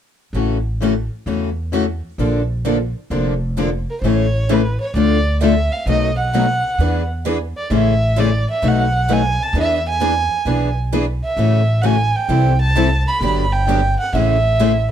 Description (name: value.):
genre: acoustic string swing (jazz manouche).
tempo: 130 BPM.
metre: 4/4.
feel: swing 64% on 8ths.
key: A major.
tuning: A4 = 440 Hz.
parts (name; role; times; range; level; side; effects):
picked steel-string acoustic guitar; accompaniment; 0.3-14.7 s; B2 to B4; -24 LUFS; right 8 dB; none.
upright bass; bass; 0.3-14.9 s; F1 to E2; -19 LUFS; equal; none.
picked steel-string acoustic guitar; accompaniment; 0.4-14.7 s; B2 to A4; -19 LUFS; left 9 dB; none.
dark violin; melody; 3.9-14.9 s; Bb4 to B5; -20 LUFS; right 3 dB; slapback echo.
room: light reverb.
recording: dark, warm production.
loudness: -15 LUFS.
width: side -9 dB against mid.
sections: 0.3-4.0 A section; 4.0-14.9 B section.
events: none.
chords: 0.3 A6; 2.2 Bbmaj7; 4.0 Amaj7; 4.9 Dm; 5.9 B7; 6.8 E7; 7.7 Amaj7; 8.6 B7; 9.5 E7; 11.4 A6; 12.3 C6; 13.2 Gmaj7; 14.1 Amaj7.